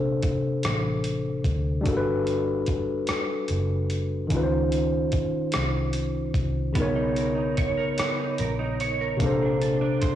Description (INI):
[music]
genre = slow six-eight R&B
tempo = 49 BPM (dotted quarters)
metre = 6/8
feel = straight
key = unclear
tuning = A4 = 441 Hz
[part]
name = tine electric piano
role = accompaniment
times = 0.0-10.2 s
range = B#2 to C#5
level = -25 LUFS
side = left 1 dB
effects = none
[part]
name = vintage muted fingered electric bass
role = bass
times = 0.0-10.1 s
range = F#1 to D2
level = -29 LUFS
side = equal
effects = tube saturation
[part]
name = dusty soul sampler-style drum kit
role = drums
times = 0.2-10.2 s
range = hi-hat, kick drum, rim click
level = -29 LUFS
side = equal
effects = soft clipping on snare
[part]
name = clean electric guitar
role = second line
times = 6.8-10.2 s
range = A#3 to C#5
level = -30 LUFS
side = right 6 dB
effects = ensemble chorus
[sound]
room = moderate echo chamber reverb, RT60 1.9 s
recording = blown-out, overdriven recording, overdrive, small room reverb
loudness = -23 LUFS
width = side -11 dB against mid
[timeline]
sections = 0.0-10.2 A section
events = none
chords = 0.0 A#maj9; 1.9 Gmaj9; 4.3 C#maj9; 6.8 Bmaj9; 9.2 A#maj9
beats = 0.63 | 1.86 3.08 | 4.30 5.53 | 6.75 7.98 | 9.20